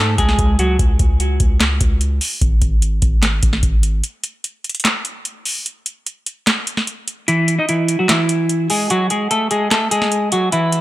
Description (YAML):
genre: hip hop, trap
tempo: 148 BPM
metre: 4/4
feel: half-time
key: C# minor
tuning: A4 = 442 Hz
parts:
  - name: semi-hollow electric guitar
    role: melody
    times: 0.0-0.8, 7.3-10.8 s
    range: E3 to D#5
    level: -16 LUFS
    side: equal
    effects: spring reverb, digital delay
  - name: long sustained 808-style bass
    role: bass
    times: 0.0-4.0 s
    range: G#1 to G#2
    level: -17 LUFS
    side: equal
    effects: none
  - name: booming analog drum machine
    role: drums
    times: 0.2-10.8 s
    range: handclaps, hi-hat, kick drum, snare drum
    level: -17 LUFS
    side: equal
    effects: none
room: little or no reverb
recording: none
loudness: -15 LUFS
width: side -16 dB against mid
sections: 0.0-10.8 A section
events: break 0.8-7.3; kick muted 5.7-10.8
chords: 0.0 C#5; 2.4 N.C.; 8.9 G#5